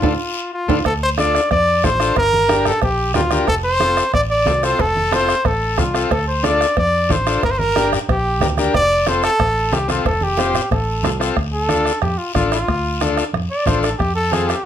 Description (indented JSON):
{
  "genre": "latin, cumbia",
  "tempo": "183 BPM",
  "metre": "4/4",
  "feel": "straight",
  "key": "D minor",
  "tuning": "A4 = 440 Hz",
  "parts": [
    { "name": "warm trumpet", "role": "melody", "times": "0.0-14.7 s", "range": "F4 to D5", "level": "-18 LUFS", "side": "equal", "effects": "none" },
    { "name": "overdriven combo organ", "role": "accompaniment", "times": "0.0-14.6 s", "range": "C4 to C5", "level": "-21 LUFS", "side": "left 4 dB", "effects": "none" },
    { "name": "vintage muted fingered electric bass", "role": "bass", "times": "0.0-14.5 s", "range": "F1 to F2", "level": "-23 LUFS", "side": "equal", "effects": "none" },
    { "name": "bombo", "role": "percussion", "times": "0.0-14.7 s", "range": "none", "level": "-23 LUFS", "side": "right 2 dB", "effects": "none" },
    { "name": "congas", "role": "percussion", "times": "0.0-14.5 s", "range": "none", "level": "-27 LUFS", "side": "right 3 dB", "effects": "none" },
    { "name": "guiro", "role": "percussion", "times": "0.0-14.7 s", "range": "none", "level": "-30 LUFS", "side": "left 6 dB", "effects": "none" },
    { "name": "timbales and cowbell", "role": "percussion", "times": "0.0-11.2 s", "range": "none", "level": "-26 LUFS", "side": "right 7 dB", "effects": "none" }
  ],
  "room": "moderate studio reverb, RT60 0.5 s",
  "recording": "none",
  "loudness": "-15 LUFS",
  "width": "side -10 dB against mid",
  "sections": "0.9-11.4 A section; 11.4-14.7 B section",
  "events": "drum fill 0.0-0.9; band accent 0.0-0.9; trumpet solo 11.4-14.7",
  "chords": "0.0 Dm; 2.2 Gm; 3.5 F; 6.1 Dm; 7.4 Gm; 8.7 F; 11.4 Dm; 14.0 F"
}